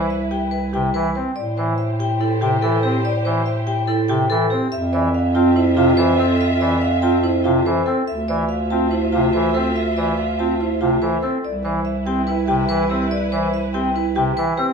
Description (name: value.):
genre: classical, minimalist pattern music.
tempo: 143 BPM.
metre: 4/4.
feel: straight.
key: C major.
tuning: A4 = 441 Hz.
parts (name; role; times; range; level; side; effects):
vibraphone with hard mallets; melody; 0.0-14.7 s; G4 to A5; -25 LUFS; left 5 dB; none.
chamber organ, soft reed; accompaniment; 0.0-14.7 s; C3 to C4; -23 LUFS; right 1 dB; none.
warm symphonic string section; sustained chords; 0.0-14.5 s; E4 to E5; -28 LUFS; right 1 dB; none.
buzzing marimba with medium hard mallets; arpeggios; 0.0-14.7 s; E4 to C5; -23 LUFS; right 4 dB; none.
warm bass clarinet; bass; 0.0-14.7 s; C2 to A2; -21 LUFS; equal; none.
mellow hollow silver concert flute; arpeggios; 0.7-14.7 s; F5 to E6; -28 LUFS; left 1 dB; none.
room: moderate large studio reverb, RT60 1.2 s.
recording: small room ambience.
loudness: -17 LUFS.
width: side -5 dB against mid.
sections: 0.0-14.7 A section.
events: none.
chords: 0.0 Cmaj7; 1.4 Am7; 4.7 Fmaj7; 8.1 Dmadd9; 11.4 Cmaj7.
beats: 0.11 0.53 0.95 | 1.37 1.79 2.21 2.63 | 3.05 3.46 3.88 4.30 | 4.72 5.14 5.56 5.98 | 6.40 6.82 7.24 7.66 | 8.08 8.50 8.92 9.34 | 9.76 10.18 10.60 11.02 | 11.44 11.86 12.28 12.70 | 13.12 13.54 13.96 14.38.